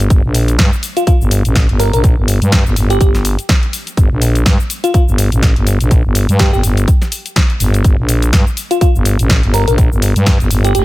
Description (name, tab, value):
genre	bass house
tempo	124 BPM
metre	4/4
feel	swing 57% on 16ths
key	G minor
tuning	A4 = 440 Hz
part	growling FM bass	bass	0.0-10.8 s	F1 to G2	-12 LUFS	equal	tube saturation, sidechain pumping
part	house drum kit	drums	0.0-10.8 s	hi-hat, shaker, snare drum	-19 LUFS	left 1 dB	none
part	electronic kick drum	drums	0.1-10.4 s	none	-12 LUFS	equal	none
part	bell-like FM electric piano	melody	1.0-10.8 s	F4 to Bb4	-18 LUFS	equal	chorus, phaser, dub echo
part	reverse cymbal	sound effects	10.7-10.8 s	none	-31 LUFS	right 6 dB	none
room	little or no reverb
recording	none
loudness	-10 LUFS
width	side -17 dB against mid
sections	0.0-10.8 A section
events	filter sweep on FM bass 0.0-10.8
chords	0.0 Gm